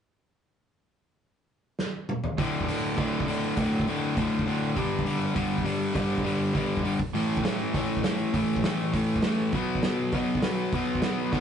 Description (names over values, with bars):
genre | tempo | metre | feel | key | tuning
punk rock | 201 BPM | 4/4 | straight | D major | A4 = 440 Hz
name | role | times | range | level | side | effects
loose indie drum kit | drums | 1.8-11.4 s | hi-hat, kick drum, snare drum, toms | -30 LUFS | right 1 dB | none
distorted electric guitar | riff | 2.4-11.4 s | D2 to B3 | -28 LUFS | left 6 dB | distortion
overdriven electric guitar | riff | 2.4-11.4 s | D2 to B3 | -29 LUFS | right 6 dB | none
room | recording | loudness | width
moderate studio reverb, RT60 0.6 s | rough rehearsal-room recording, nothing above 10.3 kHz | -24 LUFS | side -8 dB against mid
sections
1.2-2.4 A section; 2.4-11.4 B section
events
drum fill 1.8-2.4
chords
1.2 N.C.; 2.4 D5; 4.8 G5; 7.0 A5; 9.5 B5